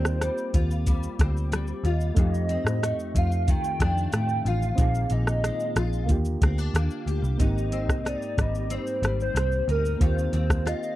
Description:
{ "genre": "indie pop, bedroom pop", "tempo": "92 BPM", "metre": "4/4", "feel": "straight", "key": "Eb major", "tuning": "A4 = 440 Hz", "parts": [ { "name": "warbly nostalgic lead", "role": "melody", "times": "0.0-11.0 s", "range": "Bb4 to G5", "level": "-30 LUFS", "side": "right 1 dB", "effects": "analog chorus, tape echo" }, { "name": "picked steel-string acoustic guitar", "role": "accompaniment", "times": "0.0-11.0 s", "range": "F2 to G4", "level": "-33 LUFS", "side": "left 5 dB", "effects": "ensemble chorus, vibrato effect" }, { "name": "soft electric-piano-like synth keys", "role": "accompaniment", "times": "0.0-11.0 s", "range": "D3 to Ab4", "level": "-34 LUFS", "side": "right 4 dB", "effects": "chorus, cassette tape" }, { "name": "vintage muted picked electric bass", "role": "bass", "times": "0.0-10.7 s", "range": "Ab1 to A2", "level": "-25 LUFS", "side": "equal", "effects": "none" }, { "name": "soft vintage rhythm box", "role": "drums", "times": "0.1-11.0 s", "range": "hi-hat, kick drum, rim click, shaker", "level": "-24 LUFS", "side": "equal", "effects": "none" } ], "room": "little or no reverb", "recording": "dry, close 1970s-style studio recording", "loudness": "-22 LUFS", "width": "side -15 dB against mid", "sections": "0.0-7.4 A section; 7.4-11.0 B section", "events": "none", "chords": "0.0 Eb69; 2.2 F13; 4.8 Bb7sus4; 6.1 Ebmaj9; 7.4 Abmaj7; 10.0 Eb69", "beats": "0.21 0.87 1.52 | 2.17 2.83 3.48 4.13 | 4.79 5.44 6.09 6.74 | 7.40 8.05 8.70 9.35 | 10.01 10.66" }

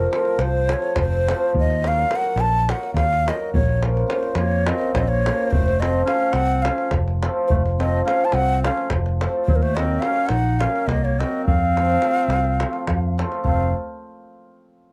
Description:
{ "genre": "balkan folk, Balkan wedding band", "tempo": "212 BPM (eighths)", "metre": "7/8", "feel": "straight", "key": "F phrygian dominant", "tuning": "A4 = 440 Hz", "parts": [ { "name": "breathy ney", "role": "melody", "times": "0.0-13.7 s", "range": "Bb4 to A5", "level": "-25 LUFS", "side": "equal", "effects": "none" }, { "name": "cimbalom", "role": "accompaniment", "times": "0.0-13.7 s", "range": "F3 to Bb4", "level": "-28 LUFS", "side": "equal", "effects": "none" }, { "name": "fingered electric bass", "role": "bass", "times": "0.0-13.7 s", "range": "F1 to F2", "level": "-24 LUFS", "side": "equal", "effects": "none" }, { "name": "davul", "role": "percussion", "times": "0.1-13.7 s", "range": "none", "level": "-28 LUFS", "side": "equal", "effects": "none" }, { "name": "clear clarinet", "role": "second line", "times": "4.4-13.7 s", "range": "Gb3 to F4", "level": "-29 LUFS", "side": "equal", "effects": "none" } ], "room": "little or no reverb", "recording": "none", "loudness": "-20 LUFS", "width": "mono", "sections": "0.0-13.4 A section; 13.4-14.9 B section", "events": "none", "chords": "0.0 F; 1.5 Ebm; 3.5 Bbm; 5.5 F; 9.5 Ebm; 11.5 F", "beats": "0.13 0.41 0.69 0.98 1.26 | 1.54 1.83 2.11 2.40 2.68 2.96 3.25 | 3.53 3.82 4.10 4.38 4.67 4.95 5.24 | 5.52 5.80 6.09 6.37 6.66 6.94 7.22 | 7.51 7.79 8.07 8.36 8.64 8.93 9.21 | 9.49 9.77 10.06 10.34 10.62 10.91 11.19 | 11.47 11.75 12.04 12.32 12.60 12.88 13.16 | 13.45" }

